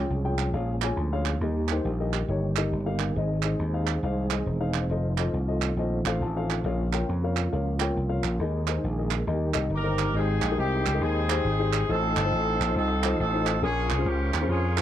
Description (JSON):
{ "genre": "uptempo gospel", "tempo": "137 BPM", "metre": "4/4", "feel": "swing 64% on 8ths", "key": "Ab major", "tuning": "A4 = 440 Hz", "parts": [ { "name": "dark upright piano", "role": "accompaniment", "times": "0.0-14.8 s", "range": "Ab2 to A5", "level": "-31 LUFS", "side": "left 3 dB", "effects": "none" }, { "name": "tonewheel organ", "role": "sustained chords", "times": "0.0-14.8 s", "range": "Db3 to Db6", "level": "-35 LUFS", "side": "right 2 dB", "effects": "slow rotary speaker, overdrive, chorus vibrato" }, { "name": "vintage slap bass", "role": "bass", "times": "0.0-14.8 s", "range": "Fb1 to F2", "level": "-27 LUFS", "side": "equal", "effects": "none" }, { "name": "group handclap", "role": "percussion", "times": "0.4-14.8 s", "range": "none", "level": "-31 LUFS", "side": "right 17 dB", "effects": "none" }, { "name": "warm horn section", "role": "melody", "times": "9.7-14.8 s", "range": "C4 to Bb4", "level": "-28 LUFS", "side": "equal", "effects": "none" } ], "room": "little or no reverb", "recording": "dry, close 1970s-style studio recording", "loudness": "-24 LUFS", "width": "side -11 dB against mid", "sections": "0.0-10.2 A section; 10.2-14.8 B section", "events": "upright piano fill 6.0-6.7", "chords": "0.0 Db; 1.4 Eb; 3.2 Ab; 4.9 F7; 6.7 Bbm; 8.4 Ebsus4; 9.3 Eb; 10.2 Abmaj7; 11.9 F7; 13.6 Bbm7" }